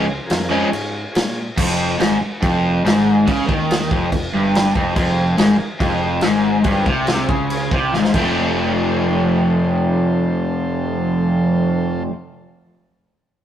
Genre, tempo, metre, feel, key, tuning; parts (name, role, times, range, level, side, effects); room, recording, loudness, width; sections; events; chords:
garage rock duo or trio; 141 BPM; 4/4; straight; A4 = 440 Hz
overdriven combo organ; sustained chords; 0.0-1.4, 5.0-12.0 s; F4 to C6; -29 LUFS; equal
overdriven semi-hollow guitar; riff; 0.0-12.1 s; F2 to Db4; -16 LUFS; equal
growling fingered electric bass; bass; 0.0-12.1 s; F1 to Bb2; -27 LUFS; equal; overdrive
vintage drum kit; drums; 0.3-8.2 s; crash cymbal, kick drum, snare drum; -22 LUFS; equal
moderate stone room reverb, RT60 1.5 s; rough rehearsal-room recording; -15 LUFS; side -10 dB against mid
0.0-1.6 A section; 1.6-8.4 B section; 8.4-11.8 C section
transistor combo organ fill 7.1-8.4; drum fill 7.9-8.4
0.0 Db; 1.6 Fm; 8.1 F